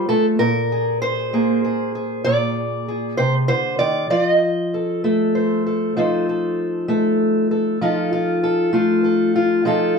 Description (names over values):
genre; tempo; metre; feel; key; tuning
acoustic country blues, solo or duo; 65 BPM (dotted quarters); 12/8; straight; F mixolydian; A4 = 439 Hz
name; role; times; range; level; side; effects
fingerpicked steel-string acoustic guitar; solo; 0.0-10.0 s; Bb2 to Eb5; -17 LUFS; equal; none
room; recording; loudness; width
moderate studio reverb, RT60 0.7 s; band playing live in one room; -17 LUFS; side -5 dB against mid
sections
0.0-10.0 A section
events
none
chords
0.4 Bb7; 4.1 F7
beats
| 0.40 1.32 2.25 3.18 | 4.10 5.03 5.96 6.88 | 7.81 8.73 9.66